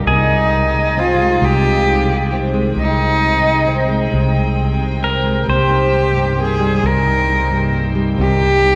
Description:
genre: acoustic folk-pop ballad.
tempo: 44 BPM (dotted quarters).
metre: 6/8.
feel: straight.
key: unclear.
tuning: A4 = 444 Hz.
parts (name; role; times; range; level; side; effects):
pedal steel guitar; second line; 0.0-8.8 s; Ab4 to C5; -25 LUFS; equal; none.
fingerpicked plugged-in steel-string acoustic guitar; accompaniment; 0.0-8.8 s; G2 to Eb4; -24 LUFS; equal; none.
warm studio string section; sustained chords; 0.0-8.8 s; Eb3 to G5; -29 LUFS; equal; none.
mellow fretless electric bass; bass; 0.0-8.8 s; C2; -20 LUFS; equal; none.
warm cello; melody; 0.1-8.8 s; Eb4 to Bb4; -19 LUFS; equal; none.
room: wet cathedral reverb, RT60 5.1 s.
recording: recorded in a church or concert hall.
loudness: -15 LUFS.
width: mono.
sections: 0.0-8.8 A section.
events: none.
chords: 0.1 Abmaj7/C; 5.5 Cm7.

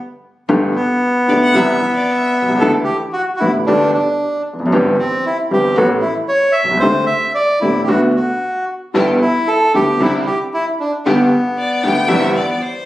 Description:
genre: tango.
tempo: 114 BPM.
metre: 4/4.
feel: rubato.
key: G major.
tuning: A4 = 440 Hz.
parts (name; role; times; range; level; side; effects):
warm baby grand piano; accompaniment; 0.5-12.3 s; G1 to A4; -16 LUFS; equal; none.
upright bass; bass; 0.5-12.3 s; E1 to D2; -32 LUFS; right 1 dB; none.
bandoneon; melody; 0.8-12.6 s; B3 to E5; -16 LUFS; equal; none.
clear violin; second line; 1.3-2.5, 11.6-12.9 s; C5 to G5; -21 LUFS; left 2 dB; none.
rich symphonic string section; stabs; 8.9-12.3 s; B3 to G4; -24 LUFS; right 1 dB; none.
room: wet large studio reverb, RT60 1.1 s.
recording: recorded on a phone in the room, club reverb, compression.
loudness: -13 LUFS.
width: side -15 dB against mid.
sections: 0.5-12.9 A section.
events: none.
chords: 0.5 Gadd9; 1.6 C; 2.6 Dsus2; 3.7 Gsus2; 4.7 C/G; 5.8 A; 6.8 D7sus4; 7.9 D6; 8.9 G6; 10.0 Cadd9; 11.1 G; 12.1 C/G.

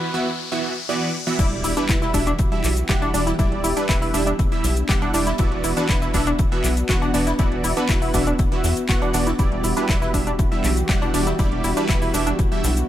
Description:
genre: progressive house.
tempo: 120 BPM.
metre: 4/4.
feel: straight.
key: E minor.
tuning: A4 = 439 Hz.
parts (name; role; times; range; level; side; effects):
supersaw stab; stabs; 0.0-12.7 s; E3 to F#5; -25 LUFS; right 2 dB; sidechain pumping, tape echo.
riser and impact; sound effects; 0.0-3.4 s; none; -31 LUFS; left 3 dB; none.
warm analog pad; sustained chords; 1.4-12.9 s; E3 to G4; -28 LUFS; left 1 dB; chorus, sidechain pumping.
tight sequenced synth; arpeggios; 1.4-12.3 s; D4 to G4; -26 LUFS; equal; chorus, sidechain pumping, tape echo.
tight sequencer bass; bass; 1.4-12.8 s; E1 to E2; -25 LUFS; equal; sidechain pumping.
electronic kick drum; drums; 1.4-12.5 s; none; -22 LUFS; equal; overdrive.
house drum kit; drums; 1.4-12.9 s; crash cymbal, handclaps, hi-hat, shaker; -28 LUFS; left 1 dB; overdrive, sidechain pumping on hats, sidechain pumping on cymbals, sidechain pumping on perc.
swinging big-band drum kit; drums; 1.4-12.9 s; hi-hat, snare drum; -38 LUFS; left 3 dB; none.
room: light reverb.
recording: none.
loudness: -18 LUFS.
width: side -12 dB against mid.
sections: 0.0-1.4 A section; 1.4-12.9 B section.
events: break 0.0-1.4; build-up 0.0-1.4; riser 0.0-1.4; drop 1.4-12.9; impact 1.4-3.4.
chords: 0.0 Bm/E; 1.4 Em7; 5.4 Bm/E; 9.4 Em7.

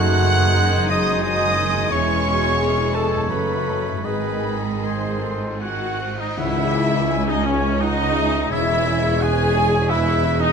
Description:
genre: classical, slow romantic movement for symphony orchestra.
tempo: 76-91 BPM.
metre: 3/4.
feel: rubato.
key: C# minor.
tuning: A4 = 440 Hz.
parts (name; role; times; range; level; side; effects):
warm symphonic violin section; melody; 0.0-10.5 s; C#5 to F#6; -28 LUFS; left 1 dB; none.
clear oboe; second line; 0.0-10.5 s; B#4 to G#5; -29 LUFS; right 2 dB; none.
mellow clarinet; second line; 0.0-10.5 s; G#4 to G#5; -31 LUFS; left 4 dB; none.
mellow concert flute; second line; 0.0-10.5 s; A4 to G#5; -31 LUFS; left 2 dB; none.
warm symphonic violin section; second line; 0.0-10.5 s; D#4 to G#5; -30 LUFS; left 3 dB; none.
warm bassoon; accompaniment; 0.0-6.0 s; D#3 to A3; -33 LUFS; right 1 dB; none.
warm symphonic viola section; accompaniment; 0.0-10.5 s; D#3 to G#4; -26 LUFS; equal; none.
mellow French horn section; sustained chords; 0.0-10.5 s; C#4 to A4; -31 LUFS; left 7 dB; none.
mellow trombone section; sustained chords; 0.0-10.5 s; C#3 to A3; -32 LUFS; right 1 dB; none.
concert harp; arpeggios; 0.0-10.5 s; E2 to G#5; -29 LUFS; left 14 dB; none.
clear trumpet; stabs; 0.0-10.5 s; C#4 to F#5; -27 LUFS; right 2 dB; none.
rich symphonic double bass section; bass; 0.0-10.5 s; E1 to C#2; -26 LUFS; right 3 dB; none.
warm symphonic cello section; bass; 0.0-10.5 s; C#2 to G#2; -26 LUFS; right 2 dB; none.
cymbal swell and tam-tam; percussion; 1.9-9.2 s; none; -34 LUFS; left 3 dB; none.
warm tuba; bass; 6.4-10.5 s; E1 to C#2; -27 LUFS; right 5 dB; none.
room: moderate recital hall reverb, RT60 1.4 s.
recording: close, detailed microphones.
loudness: -17 LUFS.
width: side -6 dB against mid.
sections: 0.0-6.4 A section; 6.4-10.5 B section.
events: band accent 6.4-7.1.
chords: 0.0 G#7/F#; 1.9 C#m/E; 3.3 F#m; 4.0 G#; 6.4 C#m; 8.5 C#m/E.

